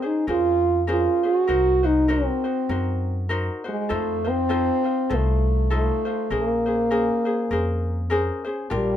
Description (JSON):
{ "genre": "Hawaiian", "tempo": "100 BPM", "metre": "4/4", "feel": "swing 58% on 8ths", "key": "Bb minor", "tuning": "A4 = 438 Hz", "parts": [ { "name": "mellow French horn", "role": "melody", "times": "0.0-9.0 s", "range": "G3 to Gb4", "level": "-22 LUFS", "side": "right 1 dB", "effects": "none" }, { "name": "ukulele", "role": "accompaniment", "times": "0.0-9.0 s", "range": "Db4 to C5", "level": "-28 LUFS", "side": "left 2 dB", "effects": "none" }, { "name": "upright bass", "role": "bass", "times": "0.3-9.0 s", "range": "Bb1 to Gb2", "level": "-25 LUFS", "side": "equal", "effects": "none" } ], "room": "light reverb", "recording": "minimal, uncompressed stereo recording", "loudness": "-20 LUFS", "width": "side -10 dB against mid", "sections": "0.0-8.7 A section", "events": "none", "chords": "0.0 Bbm9; 1.5 Cm7b5; 3.9 F7; 6.3 Bbm9", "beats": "0.28 0.88 | 1.48 2.08 2.69 3.29 | 3.89 4.50 5.10 5.70 | 6.30 6.91 7.51 8.11 | 8.71" }